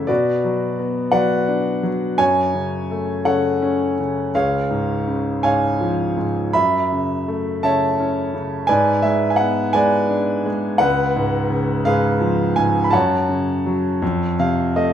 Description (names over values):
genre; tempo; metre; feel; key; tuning
classical, lyrical solo piano; 56 BPM (dotted quarters); 6/8; rubato; F# minor; A4 = 439 Hz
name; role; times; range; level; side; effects
warm concert grand piano; solo; 0.0-14.9 s; C#2 to B5; -17 LUFS; equal; none
room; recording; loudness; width
moderate recital hall reverb, RT60 1.4 s; none; -17 LUFS; side -9 dB against mid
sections
0.0-14.9 A section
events
grand piano fill 14.0-14.9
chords
0.1 Bm; 2.2 F#m; 4.3 C#; 6.5 F#m7; 8.7 G#dim; 10.8 C#7; 12.9 F#m; 14.0 F